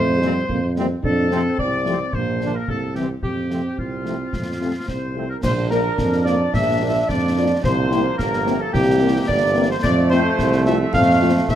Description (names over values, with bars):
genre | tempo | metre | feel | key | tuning
military-style march for wind band | 109 BPM | 2/4 | straight | F major | A4 = 438 Hz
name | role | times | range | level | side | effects
mellow euphonium | second line | 0.0-5.1 s | G3 to D4 | -28 LUFS | right 3 dB | none
warm woodwind section | second line | 0.0-11.6 s | F4 to F5 | -24 LUFS | left 2 dB | none
clear tuba | bass | 0.0-11.6 s | G1 to F2 | -21 LUFS | right 2 dB | none
dark cornet | melody | 0.2-11.6 s | C4 to F5 | -26 LUFS | right 1 dB | none
mellow French horn section | accompaniment | 0.2-11.3 s | C3 to F4 | -25 LUFS | left 5 dB | none
bright trombone section | sustained chords | 0.2-11.6 s | E3 to D4 | -27 LUFS | right 3 dB | none
concert snare drum, concert bass drum and clash cymbals | drums | 0.2-11.6 s | none | -26 LUFS | left 1 dB | none
mellow small flute group | second line | 4.9-11.6 s | G4 to F5 | -26 LUFS | equal | none
room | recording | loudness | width
light reverb | close, detailed microphones | -17 LUFS | side -10 dB against mid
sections
0.0-5.4 A section; 5.4-11.6 B section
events
none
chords
0.0 C7/F; 1.0 F; 2.1 Bb; 2.7 C; 3.2 F; 5.4 Bb; 7.6 C7; 9.8 F